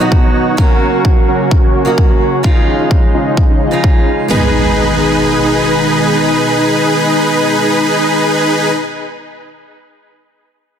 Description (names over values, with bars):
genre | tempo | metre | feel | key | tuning
EDM, festival progressive house | 129 BPM | 4/4 | straight | G# dorian | A4 = 439 Hz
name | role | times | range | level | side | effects
fingerpicked acoustic archtop guitar | accompaniment | 0.0-8.7 s | B2 to G#4 | -18 LUFS | right 4 dB | sidechain pumping, tape echo
lush unison pad | sustained chords | 0.0-8.7 s | B2 to F#4 | -19 LUFS | left 1 dB | chorus, sidechain pumping
dense compressed supersaw | riff | 0.0-8.7 s | C#4 to G#5 | -14 LUFS | equal | sidechain pumping, low-pass filter, tape echo
electronic kick drum | drums | 0.1-3.9 s | none | -11 LUFS | equal | none
electronic hi-hat | drums | 0.3-4.2 s | none | -41 LUFS | left 1 dB | none
impact | sound effects | 4.3-8.8 s | none | -19 LUFS | equal | none
room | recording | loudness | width
moderate scoring stage reverb, RT60 1.8 s | dense, heavily limited modern master | -10 LUFS | side -8 dB against mid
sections
0.0-4.3 A section; 4.3-8.0 B section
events
filter sweep on supersaw synth 0.0-4.3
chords
0.0 B; 0.6 F#; 2.4 C#add9; 4.3 G#m